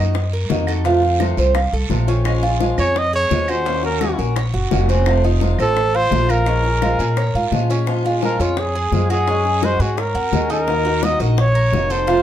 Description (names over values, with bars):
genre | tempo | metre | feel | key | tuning
latin, Cuban son and guajira | 171 BPM | 4/4 | straight | Bb minor | A4 = 440 Hz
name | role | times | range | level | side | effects
picked old ladder-braced acoustic guitar | accompaniment | 0.0-12.2 s | C3 to Ab4 | -23 LUFS | left 3 dB | none
Cuban tres | arpeggios | 0.0-12.2 s | C4 to F5 | -23 LUFS | right 3 dB | none
upright bass | bass | 0.0-12.2 s | F1 to Bb2 | -19 LUFS | equal | none
bongos | percussion | 0.1-12.2 s | none | -26 LUFS | left 5 dB | none
guiro | percussion | 0.2-12.2 s | none | -34 LUFS | right 9 dB | none
claves | percussion | 0.7-7.3 s | none | -33 LUFS | right 2 dB | none
clear trumpet | melody | 2.8-12.2 s | F4 to Eb5 | -20 LUFS | equal | none
room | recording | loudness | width
light reverb | dark, warm production | -15 LUFS | side -11 dB against mid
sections
0.0-7.9 A section; 7.9-12.2 B section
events
trumpet solo 7.9-12.2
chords
0.0 Ebm; 0.9 F; 2.3 Bbm7; 3.7 Ebm7; 5.1 F7; 6.5 Bbm7; 9.3 Gbsus2; 10.7 Ebm